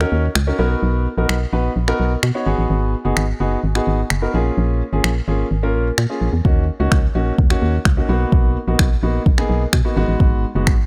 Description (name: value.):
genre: dance-pop.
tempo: 128 BPM.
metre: 4/4.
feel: straight.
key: unclear.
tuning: A4 = 440 Hz.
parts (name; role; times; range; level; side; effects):
warm concert grand piano; accompaniment; 0.0-10.7 s; Ab3 to Db5; -24 LUFS; equal; sidechain pumping.
organ-like FM bass; bass; 0.0-10.8 s; Gb1 to B2; -21 LUFS; equal; sidechain pumping.
deep house drum kit; drums; 0.0-10.8 s; finger snaps, kick drum; -19 LUFS; equal; none.
room: little or no reverb.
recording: none.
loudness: -18 LUFS.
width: mono.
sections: 0.0-10.9 A section.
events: none.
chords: 0.0 Ebm7; 0.6 Bmaj7; 2.5 Abm7; 4.3 Bbm7; 6.5 Ebm7; 8.1 Bmaj7; 10.0 Abm7.